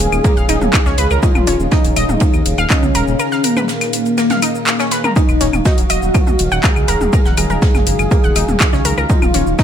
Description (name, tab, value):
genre	melodic techno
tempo	122 BPM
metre	4/4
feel	straight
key	Eb minor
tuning	A4 = 440 Hz
part	wide unison lead	melody	0.0-9.6 s	Bb3 to Ab4	-19 LUFS	left 1 dB	sidechain pumping, dub echo
part	sweeping resonant pad	sustained chords	0.0-9.6 s	Eb3 to F5	-25 LUFS	right 2 dB	chorus, sidechain pumping
part	swelling detuned saw bass	bass	0.0-9.5 s	Eb1 to Eb2	-19 LUFS	equal	sidechain pumping
part	house drum kit	drums	0.0-9.6 s	claves, handclaps, hi-hat, shaker, toms	-19 LUFS	left 2 dB	overdrive
part	natural country drum kit	drums	0.0-9.6 s	ride cymbal, snare drum	-30 LUFS	right 3 dB	high-pass filter on cymbals, high-pass filter on snare, high-pass filter on room
part	warbly dusty pluck	arpeggios	0.2-9.6 s	Bb3 to Gb6	-22 LUFS	equal	chorus, sidechain pumping, digital delay
part	electronic kick drum	drums	0.2-9.6 s	none	-14 LUFS	equal	overdrive
room	digital ambience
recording	none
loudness	-12 LUFS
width	side -9 dB against mid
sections	0.0-9.6 A section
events	none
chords	0.0 Dbadd9/Eb; 5.2 Ebmadd9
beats	0.24 0.74 | 1.23 1.72 2.21 2.70 | 3.19 3.69 4.18 4.67 | 5.16 5.65 6.15 6.64 | 7.13 7.62 8.11 8.61 | 9.10 9.59